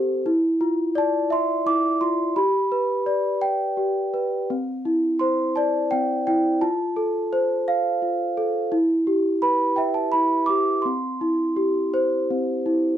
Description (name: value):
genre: children's music, lullaby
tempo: 85 BPM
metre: 3/4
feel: rubato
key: C major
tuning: A4 = 437 Hz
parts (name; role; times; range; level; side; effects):
- large celesta; solo; 0.0-13.0 s; C4 to D6; -20 LUFS; equal; none
room: moderate studio reverb, RT60 0.6 s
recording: dark, warm production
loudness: -20 LUFS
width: side -10 dB against mid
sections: 0.0-13.0 A section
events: none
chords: 0.3 Dmadd9; 2.4 G; 4.5 Cadd9; 6.6 F; 8.7 G6; 10.8 C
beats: | 0.26 0.96 1.66 | 2.35 3.06 3.77 | 4.49 5.21 5.92 | 6.63 7.33 8.03 | 8.73 9.43 10.13 | 10.85 11.56 12.30